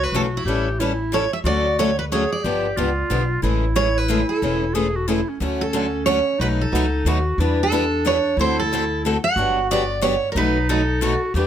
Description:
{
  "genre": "acoustic string swing (jazz manouche)",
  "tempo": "182 BPM",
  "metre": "3/4",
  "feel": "swing 62% on 8ths",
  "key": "A major, D major from 5.4 s",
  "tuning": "A4 = 440 Hz",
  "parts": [
    { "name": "picked steel-string acoustic guitar", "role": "melody", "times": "0.0-11.2 s", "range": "E4 to F#5", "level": "-22 LUFS", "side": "right 3 dB", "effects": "none" },
    { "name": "breathy clarinet", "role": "second line", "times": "0.0-11.5 s", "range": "C#4 to G#4", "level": "-25 LUFS", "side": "right 1 dB", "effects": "none" },
    { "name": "upright bass", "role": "bass", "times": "0.0-11.5 s", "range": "E1 to E2", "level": "-24 LUFS", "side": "equal", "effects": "none" },
    { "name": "picked acoustic archtop guitar", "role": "accompaniment", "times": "0.1-11.5 s", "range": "B2 to B4", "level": "-28 LUFS", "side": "right 4 dB", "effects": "none" },
    { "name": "picked steel-string acoustic guitar", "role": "accompaniment", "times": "0.1-11.5 s", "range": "B2 to A4", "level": "-25 LUFS", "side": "left 6 dB", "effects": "none" }
  ],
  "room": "light reverb",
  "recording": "none",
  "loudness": "-18 LUFS",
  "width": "side -10 dB against mid",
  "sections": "0.0-5.4 A section; 5.4-11.5 B section",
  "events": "none",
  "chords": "0.5 A7; 1.5 Dmaj7; 2.4 G7; 3.4 Amaj7; 5.4 Dmaj7; 6.4 B7; 7.4 Em7; 8.4 D7; 9.4 Gmaj7; 10.4 B7"
}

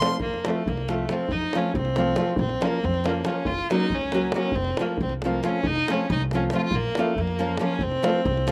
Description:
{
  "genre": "balkan folk, Balkan wedding band",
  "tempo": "277 BPM (eighths)",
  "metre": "5/8",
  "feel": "straight",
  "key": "F phrygian dominant",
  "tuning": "A4 = 439 Hz",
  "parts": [
    { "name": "rich fiddle", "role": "melody", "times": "0.0-8.5 s", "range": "A3 to C6", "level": "-30 LUFS", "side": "equal", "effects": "slapback echo" },
    { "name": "nylon-string guitar", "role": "accompaniment", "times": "0.0-8.5 s", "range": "F3 to Gb4", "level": "-28 LUFS", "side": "equal", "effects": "none" },
    { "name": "davul", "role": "percussion", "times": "0.0-8.5 s", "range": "none", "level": "-33 LUFS", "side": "equal", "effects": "slapback echo" },
    { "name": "upright bass", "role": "bass", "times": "0.2-8.5 s", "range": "F1 to F2", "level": "-31 LUFS", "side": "equal", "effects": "none" }
  ],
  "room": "little or no reverb",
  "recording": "recorded outdoors, with no room sound",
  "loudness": "-25 LUFS",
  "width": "mono",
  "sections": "0.2-8.5 A section",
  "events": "none",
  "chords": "0.2 F; 2.4 Bbm; 3.5 Gb; 4.6 F; 6.7 Bbm; 7.8 F"
}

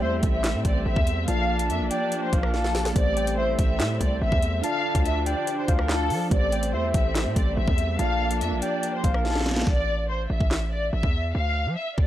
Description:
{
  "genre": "hip hop, drill",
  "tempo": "143 BPM",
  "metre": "4/4",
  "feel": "half-time",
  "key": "A phrygian",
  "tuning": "A4 = 440 Hz",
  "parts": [
    { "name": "warm studio violin section", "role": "melody", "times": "0.0-12.1 s", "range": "A4 to F5", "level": "-28 LUFS", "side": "left 1 dB", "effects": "low-pass filter" },
    { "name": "soft octave-layered synth lead", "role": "second line", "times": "0.0-9.6 s", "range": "E5 to A5", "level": "-32 LUFS", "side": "left 2 dB", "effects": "chorus, analog delay" },
    { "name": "mellow tine electric piano", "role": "accompaniment", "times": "0.0-9.7 s", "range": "A3 to D5", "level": "-32 LUFS", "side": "right 1 dB", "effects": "medium stereo tremolo, low-pass filter" },
    { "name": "muted studio string section", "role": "sustained chords", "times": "0.0-9.7 s", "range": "D3 to D4", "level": "-34 LUFS", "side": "right 2 dB", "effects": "none" },
    { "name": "hard-hitting 808-style bass", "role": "bass", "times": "0.0-12.1 s", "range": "A1 to F3", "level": "-26 LUFS", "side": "equal", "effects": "none" },
    { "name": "drill drum kit", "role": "drums", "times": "0.2-12.1 s", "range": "handclaps, hi-hat, kick drum, rim click, snare drum", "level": "-25 LUFS", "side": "equal", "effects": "none" }
  ],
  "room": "little or no reverb",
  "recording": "dry, gritty hardware recording",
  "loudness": "-22 LUFS",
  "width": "side -13 dB against mid",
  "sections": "0.0-9.7 A section; 9.7-12.1 B section",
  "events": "drum fill 2.5-3.0, 9.2-9.7; hi-hats muted 9.7-12.1",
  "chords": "0.0 Am7; 1.3 Bb; 3.0 Am7; 4.6 Dm; 6.3 Am7; 8.0 Bb; 9.7 A5; 11.3 Dm"
}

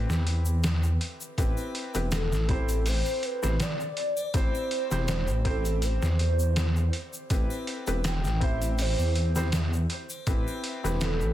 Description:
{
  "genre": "trip hop",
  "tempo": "81 BPM",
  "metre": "4/4",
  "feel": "swing 54% on 16ths",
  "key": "A minor",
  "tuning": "A4 = 439 Hz",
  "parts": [
    { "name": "felt-muted upright piano", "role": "accompaniment", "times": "0.0-11.3 s", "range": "C4 to C5", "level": "-35 LUFS", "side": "left 1 dB", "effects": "harmonic tremolo, tape echo" },
    { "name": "dark detuned saw bass", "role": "bass", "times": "0.0-11.3 s", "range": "E1 to E2", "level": "-26 LUFS", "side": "equal", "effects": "none" },
    { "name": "trip hop sampler-style drum kit", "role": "drums", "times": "0.1-11.2 s", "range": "hi-hat, kick drum, snare drum", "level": "-30 LUFS", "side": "equal", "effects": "small room ambience" },
    { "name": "egg shaker and triangle", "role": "percussion", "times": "0.1-11.3 s", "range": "none", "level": "-42 LUFS", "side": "left 3 dB", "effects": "none" },
    { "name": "pure breathy sine lead", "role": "melody", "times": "2.1-11.3 s", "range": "A4 to G5", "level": "-33 LUFS", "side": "right 1 dB", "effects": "analog chorus, dub echo" }
  ],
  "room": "little or no reverb",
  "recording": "dense, heavily limited modern master",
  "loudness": "-25 LUFS",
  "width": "side -13 dB against mid",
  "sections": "0.0-11.3 A section",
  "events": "none",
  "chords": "0.0 Am9"
}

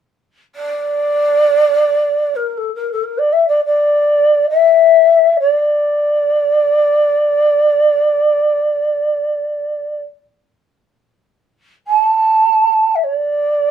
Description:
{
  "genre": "japanese traditional",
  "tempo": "free time",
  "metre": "none",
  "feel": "none",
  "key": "unclear",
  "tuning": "A4 = 442 Hz",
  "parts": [
    { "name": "mellow long shakuhachi", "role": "melody", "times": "0.6-13.7 s", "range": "A4 to A5", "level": "-12 LUFS", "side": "equal", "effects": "none" }
  ],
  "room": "light reverb",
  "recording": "none",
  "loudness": "-12 LUFS",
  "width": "side -9 dB against mid",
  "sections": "0.0-13.7 A section",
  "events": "none",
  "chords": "none"
}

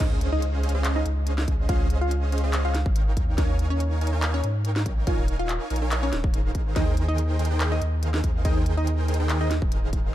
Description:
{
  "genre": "future bass",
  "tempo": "142 BPM",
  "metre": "4/4",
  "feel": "swing 53% on 16ths, half-time",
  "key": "unclear",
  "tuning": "A4 = 443 Hz",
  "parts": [
    { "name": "wide unison pluck", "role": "melody", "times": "0.0-9.6 s", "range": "Db4 to F5", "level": "-32 LUFS", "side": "equal", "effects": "sidechain pumping, digital delay" },
    { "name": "supersaw chords", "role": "riff", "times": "0.0-10.1 s", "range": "Eb3 to Ab5", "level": "-31 LUFS", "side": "right 1 dB", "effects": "sidechain pumping, digital delay" },
    { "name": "saturated sub bass", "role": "bass", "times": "0.0-10.1 s", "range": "Eb1 to Ab2", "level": "-25 LUFS", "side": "equal", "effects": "sidechain pumping" },
    { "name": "electronic kick drum", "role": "drums", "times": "0.0-10.0 s", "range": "none", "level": "-24 LUFS", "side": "equal", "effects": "none" },
    { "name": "trap drum kit", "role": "drums", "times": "0.0-10.0 s", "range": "crash cymbal, handclaps, hi-hat, snare drum", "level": "-32 LUFS", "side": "equal", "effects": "none" },
    { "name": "sub drop", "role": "sound effects", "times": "0.0-1.7 s", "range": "none", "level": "barely audible", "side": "none", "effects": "none" }
  ],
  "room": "digital ambience",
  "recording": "dark, warm production",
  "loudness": "-22 LUFS",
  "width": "side -13 dB against mid",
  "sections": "0.0-10.1 A section",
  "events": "drop 0.0-10.1; impact 0.0-1.7",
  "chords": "0.0 Dbmaj9; 3.2 Eb9sus4; 6.5 Abmaj9/Eb"
}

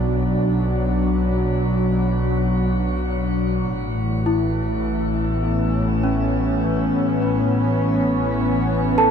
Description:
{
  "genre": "ambient",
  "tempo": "51 BPM",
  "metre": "3/4",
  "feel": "straight",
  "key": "unclear",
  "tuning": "A4 = 440 Hz",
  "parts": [
    { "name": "warm analog pad", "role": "sustained chords", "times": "0.0-9.1 s", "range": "A2 to D4", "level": "-19 LUFS", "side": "equal", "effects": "chorus" },
    { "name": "rich chamber double bass section", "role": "bass", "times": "0.0-9.1 s", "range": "A1 to B1", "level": "-26 LUFS", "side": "equal", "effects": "none" },
    { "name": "small celesta", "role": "arpeggios", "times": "4.3-9.1 s", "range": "C#4 to A5", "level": "-24 LUFS", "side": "equal", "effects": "ping-pong delay" }
  ],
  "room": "wet shimmer reverb, RT60 7.2 s",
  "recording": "none",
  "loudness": "-18 LUFS",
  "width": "side -7 dB against mid",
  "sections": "0.0-9.1 A section",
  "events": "none",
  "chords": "0.0 Bm; 3.7 A"
}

